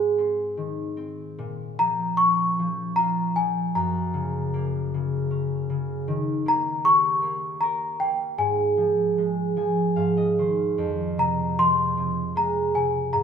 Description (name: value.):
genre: children's music, lullaby.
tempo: 77 BPM.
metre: 3/4.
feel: rubato.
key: unclear.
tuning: A4 = 440 Hz.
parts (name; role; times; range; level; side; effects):
celesta; melody; 0.0-13.2 s; G5 to Db6; -22 LUFS; left 2 dB; none.
concert harp; accompaniment; 0.0-13.2 s; F2 to Ab5; -24 LUFS; right 2 dB; none.
room: moderate concert hall reverb, RT60 1.8 s.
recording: minimal, uncompressed stereo recording.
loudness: -21 LUFS.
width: side -7 dB against mid.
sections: 0.0-1.4 A section; 1.4-13.2 B section.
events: harp fill 9.2-10.8.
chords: 0.0 Ab; 1.4 Bbm; 3.7 Gb; 6.1 Eb7; 8.4 Fm/Ab; 10.0 Ab; 10.8 Fm.